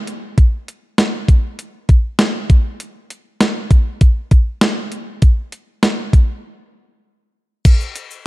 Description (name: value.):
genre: pop.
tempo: 99 BPM.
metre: 4/4.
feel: straight.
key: none.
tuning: none.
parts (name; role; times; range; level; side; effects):
clean 12-bit digital drum machine; drums; 0.1-8.1 s; crash cymbal, hi-hat, kick drum, snare drum; -12 LUFS; equal; overdrive.
tube shaker; percussion; 7.7-8.2 s; none; -37 LUFS; left 6 dB; none.
room: light reverb.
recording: dark, warm production.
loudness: -13 LUFS.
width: side -19 dB against mid.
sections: 0.0-7.7 A section.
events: break 6.4-7.7.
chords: none.